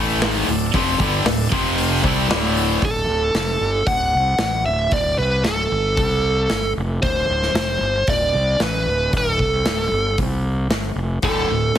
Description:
hard rock; 114 BPM; 4/4; straight; A4 = 441 Hz
tonewheel organ; sustained chords; 0.0-2.8 s; D4 to G5; -31 LUFS; right 1 dB; wide subtle chorus
high-gain distorted guitar; riff; 0.0-2.8, 11.2-11.8 s; D2 to C4; -23 LUFS; right 10 dB; distortion
overdriven electric guitar; riff; 0.0-2.8, 11.2-11.8 s; D2 to C4; -22 LUFS; left 12 dB
fuzz fingered electric bass; bass; 0.0-11.8 s; D1 to C2; -23 LUFS; equal; overdrive
big rock drum kit; drums; 0.2-11.8 s; hi-hat, kick drum, snare drum; -24 LUFS; equal
bluesy overdriven lead guitar; melody; 2.9-11.8 s; A4 to F#5; -20 LUFS; right 1 dB; distortion
small room ambience; heavily compressed radio sound; -17 LUFS; side -10 dB against mid
0.0-2.8 A section; 2.8-11.8 B section
0.0 D5; 1.5 F5; 2.0 D5; 2.8 D; 6.0 Am/C; 6.5 D5; 10.2 N.C.; 10.7 D5

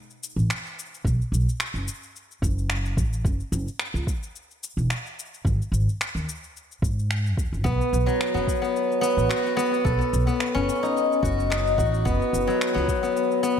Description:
organic downtempo; 109 BPM; 4/4; swing 55% on 16ths; B mixolydian; A4 = 440 Hz
electronic shaker and finger snaps; drums; 0.1-13.6 s; -32 LUFS; left 1 dB; overdrive
upright bass; bass; 0.4-12.9 s; E1 to G#2; -24 LUFS; equal
electronic kick drum; drums; 1.0-13.0 s; -26 LUFS; equal; overdrive
steel-string zither; arpeggios; 7.6-13.6 s; F#3 to A4; -22 LUFS; left 2 dB; ping-pong delay
wet lush hall reverb, RT60 2.1 s; dreamy mix soaked in reverb; -22 LUFS; side -8 dB against mid
0.0-13.6 A section
0.0 B5; 3.2 F#5; 5.5 G#5; 7.7 B7; 12.1 F#5

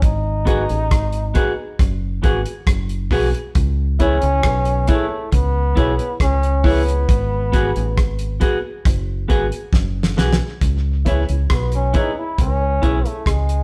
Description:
roots reggae; 68 BPM; 4/4; straight; C# minor; A4 = 438 Hz
bright trombone; melody; 0.0-13.6 s; G#3 to E4; -26 LUFS; equal
deep dub fingered electric bass; bass; 0.0-13.6 s; F#1 to C#2; -22 LUFS; equal
damped 70s drum kit; drums; 0.0-13.6 s; hi-hat, kick drum, rim click, snare drum; -21 LUFS; equal
semi-hollow electric guitar; accompaniment; 0.5-13.0 s; B3 to G#4; -26 LUFS; equal
dark baby grand piano; stabs; 0.5-13.0 s; E4 to C#5; -28 LUFS; equal
moderate stone room reverb, RT60 1.1 s; band playing live in one room; -18 LUFS; mono
0.0-10.6 A section; 10.6-13.6 B section
drum fill 9.7-10.6
0.0 G#m7; 3.6 C#m7; 7.1 G#m7; 10.6 C#m7

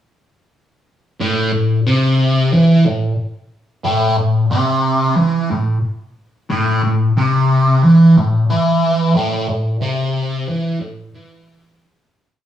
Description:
rock; 90 BPM; 4/4; straight; A minor; A4 = 443 Hz
fuzz guitar; solo; 1.2-11.8 s; A2 to E3; -13 LUFS; equal; distortion, phaser
moderate stone room reverb, RT60 1.0 s; rough rehearsal-room recording, studio reverb; -13 LUFS; side -10 dB against mid
1.2-11.8 riff
fade-out 9.2-11.8

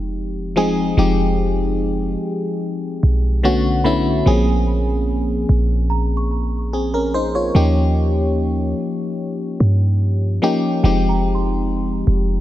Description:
contemporary R&B; 73 BPM; 4/4; straight; F minor; A4 = 440 Hz
FM electric piano; accompaniment; 0.0-12.4 s; D3 to Db5; -19 LUFS; left 1 dB; chorus
clean 808-style bass; bass; 0.0-12.4 s; F1 to G2; -18 LUFS; equal
small celesta; texture; 0.0-12.4 s; F5 to Db6; -31 LUFS; right 2 dB; digital delay
light reverb, small room ambience; -16 LUFS; side -14 dB against mid
0.0-12.4 A section
0.0 Fm9; 3.4 Bm7; 4.3 Bbm7; 7.5 Eb9; 10.8 Fm9

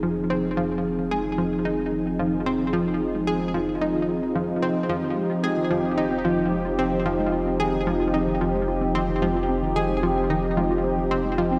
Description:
ambient, sequencer-driven space music; 111 BPM; 4/4; straight; F minor; A4 = 441 Hz
sweeping resonant pad; sustained chords; 0.0-11.6 s; F3 to Ab4; -26 LUFS; equal; chorus, shimmer reverb
warbly dusty pluck; arpeggios; 0.0-11.6 s; Eb3 to F4; -36 LUFS; equal
analog pluck; riff; 0.0-11.5 s; F3 to Ab4; -30 LUFS; equal; chorus, delay, shimmer reverb
round analog bass; bass; 0.0-11.6 s; F1; -37 LUFS; equal
wet lush hall reverb, RT60 3.0 s; dreamy mix soaked in reverb; -24 LUFS; mono
0.0-11.6 A section
fade-in on analog synth bass 0.0-11.6
0.0 Fm7

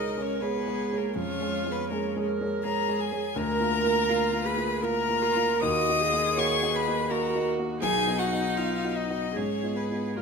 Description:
classical, slow romantic movement for piano quartet; 72-84 BPM; 3/4; rubato; Eb minor from 3.4 s; A4 = 440 Hz
warm violin; melody; 0.0-10.2 s; A#4 to Eb6; -30 LUFS; left 8 dB
warm cello; second line; 0.0-10.2 s; A#3 to Eb5; -31 LUFS; right 7 dB
dark grand piano; accompaniment; 0.0-10.2 s; B1 to F5; -29 LUFS; left 1 dB
rich viola; accompaniment; 0.0-10.2 s; C#4 to Bb4; -33 LUFS; right 3 dB
wet recital hall reverb, RT60 1.7 s; -24 LUFS; side -5 dB against mid
0.0-10.2 A section
0.0 C#5; 1.2 C#/E#; 3.4 Bb/D; 5.6 Ebm; 7.8 B; 9.4 Fm7b5/Ab

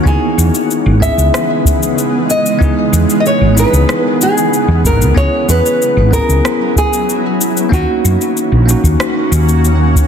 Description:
sunset chillout; 94 BPM; 4/4; straight; C# dorian; A4 = 440 Hz
bell-like tine electric piano; accompaniment; 0.0-10.1 s; A#3 to G#4; -18 LUFS; left 1 dB; auto-pan, digital delay
shimmering ambient pad; sustained chords; 0.0-10.1 s; C#3 to F#4; -17 LUFS; right 1 dB; chorus, built-in reverb
nylon-string guitar; melody; 0.1-9.6 s; F#4 to E5; -16 LUFS; equal; digital delay
woody fretless electric bass; bass; 0.1-10.0 s; G#1 to F#2; -12 LUFS; equal
electronic cabasa and rim click; drums; 0.1-10.1 s; -20 LUFS; left 3 dB; overdrive
electronic kick drum; drums; 0.1-10.1 s; -15 LUFS; equal
light reverb, digital ambience; dense, heavily limited modern master; -10 LUFS; side -8 dB against mid
0.0-10.1 A section
0.1 C#m7; 5.2 F#7sus4; 7.7 D#m7

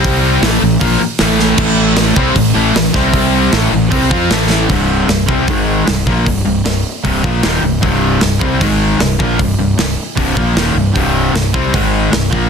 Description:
hard rock; 154 BPM; 4/4; straight; A4 = 440 Hz
cranked stack guitar; riff; 0.0-12.5 s; C2 to F4; -16 LUFS; left 11 dB; overdrive
high-gain distorted guitar; riff; 0.0-4.7 s; A2 to F4; -18 LUFS; equal; distortion
overdriven electric guitar; riff; 0.0-12.5 s; C2 to F4; -17 LUFS; right 12 dB
fuzz fingered electric bass; bass; 0.0-12.5 s; C1 to F2; -18 LUFS; equal; overdrive
tight metal drum kit; drums; 0.0-12.4 s; crash cymbal, hi-hat, kick drum, snare drum; -17 LUFS; right 1 dB; soft clipping on kick
small room ambience; dense, heavily limited modern master; -11 LUFS; side -6 dB against mid
0.0-4.7 A section; 4.7-12.5 B section
drum fill 4.5
0.4 A5; 2.9 C5; 3.5 A5; 4.7 C5; 5.5 Ab5; 5.9 Cm; 8.6 Ab5; 9.0 Cm; 11.7 Ab5

